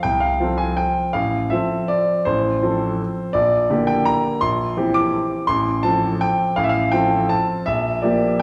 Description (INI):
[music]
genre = classical, piano waltz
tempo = 165 BPM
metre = 3/4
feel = uneven beats, rubato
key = F major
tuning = A4 = 442 Hz
[part]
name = clear grand piano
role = solo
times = 0.0-8.4 s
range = A1 to D6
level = -20 LUFS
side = equal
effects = none
[sound]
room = wet recital hall reverb, RT60 1.5 s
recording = heard from further back in the room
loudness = -20 LUFS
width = mono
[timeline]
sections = 0.0-8.4 A section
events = none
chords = 0.0 F; 1.1 F/A; 3.3 Gm/Bb; 4.4 C7/Bb; 5.5 F/A; 7.7 Gm7/Bb